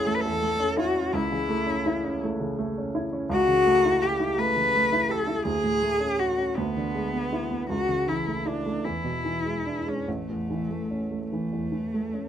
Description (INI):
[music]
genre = classical, romantic duo for cello and grand piano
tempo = 48-57 BPM (dotted quarters)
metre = 6/8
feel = rubato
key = A major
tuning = A4 = 441 Hz
[part]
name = rich cello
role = melody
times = 0.0-12.3 s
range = A3 to B4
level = -25 LUFS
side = left 2 dB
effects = none
[part]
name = warm baby grand piano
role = accompaniment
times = 0.0-12.3 s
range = A1 to G4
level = -28 LUFS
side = right 2 dB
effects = none
[sound]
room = light reverb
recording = none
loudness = -24 LUFS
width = side -9 dB against mid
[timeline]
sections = 0.0-12.3 A section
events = none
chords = 0.0 A; 1.1 A/C#; 3.3 A7/C#; 5.4 Dmaj7; 6.6 E7/D; 7.7 A/C#; 8.8 E7; 10.1 A